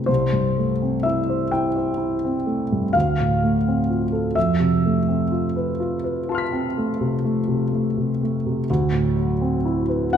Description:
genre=classical, impressionist solo piano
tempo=42 BPM (dotted quarters)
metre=9/8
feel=rubato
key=unclear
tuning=A4 = 440 Hz
part: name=warm concert grand piano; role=solo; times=0.0-10.2 s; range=C2 to B6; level=-19 LUFS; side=equal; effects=none
room=moderate scoring stage reverb, RT60 1.8 s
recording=none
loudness=-19 LUFS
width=side -8 dB against mid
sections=0.0-10.2 A section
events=none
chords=0.1 C6; 2.9 Dm7; 4.4 Fmaj7#11; 8.7 D13

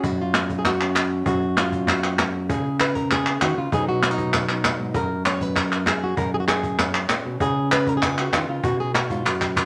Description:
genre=flamenco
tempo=195 BPM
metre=4/4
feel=straight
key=F# major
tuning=A4 = 440 Hz
part: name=flamenco guitar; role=melody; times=0.0-9.7 s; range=F#2 to C#5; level=-25 LUFS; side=equal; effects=none
part: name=cajon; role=percussion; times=0.0-9.6 s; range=none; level=-31 LUFS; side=equal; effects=none
part: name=palmas hand claps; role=percussion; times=0.3-9.7 s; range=none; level=-25 LUFS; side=equal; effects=none
room=wet studio reverb, RT60 0.8 s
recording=none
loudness=-22 LUFS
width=mono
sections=0.0-9.7 A section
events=drum fill 9.3-9.7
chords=0.0 F#5; 2.5 C#5; 3.7 B; 4.9 F#; 7.4 C#; 8.6 B5

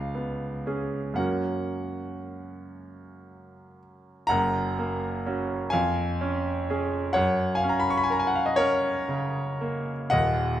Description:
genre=classical, romantic nocturne for solo piano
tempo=36-42 BPM (dotted quarters)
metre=12/8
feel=rubato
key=F# major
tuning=A4 = 440 Hz
part: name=bright concert grand piano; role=solo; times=0.0-10.6 s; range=D#1 to C#6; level=-25 LUFS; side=equal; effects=none
room=moderate recital hall reverb, RT60 1.6 s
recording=close, detailed microphones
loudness=-24 LUFS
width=side -11 dB against mid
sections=0.0-4.3 A section; 4.3-10.6 A section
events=none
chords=0.0 C#7; 1.2 F#; 5.7 C#/E#; 7.2 F#

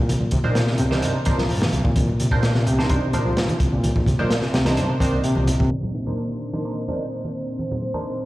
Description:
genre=breakbeat, breaks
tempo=128 BPM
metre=4/4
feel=straight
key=C minor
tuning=A4 = 440 Hz
part: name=barky reed electric piano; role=riff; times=0.0-5.7 s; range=Bb2 to C4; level=-23 LUFS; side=equal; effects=overdrive, fast tremolo, tape echo
part: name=detuned saw bass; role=bass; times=0.0-5.6 s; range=C2 to C3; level=-23 LUFS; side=equal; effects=none
part: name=crunchy breakbeat drum kit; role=drums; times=0.1-5.7 s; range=hi-hat, kick drum, snare drum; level=-23 LUFS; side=equal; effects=none
part: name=congas and bongos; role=percussion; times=0.1-8.0 s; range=none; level=-30 LUFS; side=right 1 dB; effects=none
part: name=band-passed chord stab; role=stabs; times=0.4-8.1 s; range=D4 to C5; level=-28 LUFS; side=right 2 dB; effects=phaser, cassette tape, tape echo
part: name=dark analog pad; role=sustained chords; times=5.7-8.3 s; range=Bb3 to C5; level=-28 LUFS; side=equal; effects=chorus, sidechain pumping
room=light reverb, small room ambience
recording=played on a big sound system in a bare room, large studio reverb, vinyl crackle, low-pass filter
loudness=-19 LUFS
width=side -17 dB against mid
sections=0.0-5.7 A section; 5.7-8.3 B section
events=filter sweep 5.7-8.3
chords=0.0 Cm9

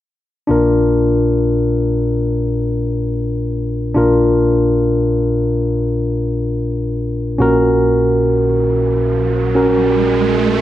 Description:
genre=pop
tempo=free time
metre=none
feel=none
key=Bb major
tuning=A4 = 441 Hz
part: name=barky tine electric piano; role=accompaniment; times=0.5-10.6 s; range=Bb1 to Bb4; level=-14 LUFS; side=equal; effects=overdrive
part: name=riser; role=sound effects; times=8.5-10.6 s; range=none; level=-22 LUFS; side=right 6 dB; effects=none
room=moderate plate reverb, RT60 2.4 s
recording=dark, warm production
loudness=-13 LUFS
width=side -13 dB against mid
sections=0.5-10.6 A section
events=riser 8.5-10.6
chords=0.5 Bb; 7.4 Gb/Bb

